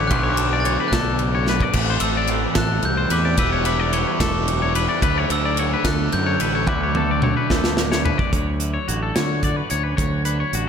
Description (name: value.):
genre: math rock and midwest emo.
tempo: 73 BPM (dotted quarters).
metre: 6/8.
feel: straight.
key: D major.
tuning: A4 = 440 Hz.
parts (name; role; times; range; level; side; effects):
twelve-string electric guitar; accompaniment; 0.0-10.7 s; D2 to G4; -29 LUFS; right 6 dB; spring reverb, slapback echo.
twangy electric guitar; arpeggios; 0.0-10.7 s; F#4 to D5; -25 LUFS; left 6 dB; slapback echo.
overdriven electric guitar; riff; 0.0-8.3 s; A2 to E4; -28 LUFS; equal; spring reverb, slapback echo.
growling fingered electric bass; bass; 0.0-10.7 s; E1 to D3; -24 LUFS; equal; overdrive.
glockenspiel with soft plastic mallets; melody; 0.1-7.7 s; C#6 to A6; -26 LUFS; equal; slapback echo.
modern studio drum kit; drums; 0.1-10.7 s; crash cymbal, hi-hat, kick drum, ride cymbal, snare drum, toms; -23 LUFS; equal; none.
room: moderate lush hall reverb, RT60 1.8 s, small room ambience.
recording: big arena sound.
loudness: -18 LUFS.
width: side -7 dB against mid.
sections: 0.0-8.3 A section; 8.3-10.7 B section.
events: drum fill 1.5, 6.7-8.3.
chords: 0.1 Bm7; 1.7 Am9; 3.4 Em9; 5.0 Dmaj9; 6.7 D69; 8.3 Dmaj7.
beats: | 0.11 0.93 | 1.75 2.57 | 3.39 4.21 | 5.03 5.85 | 6.67 7.50 | 8.32 9.15 | 9.98.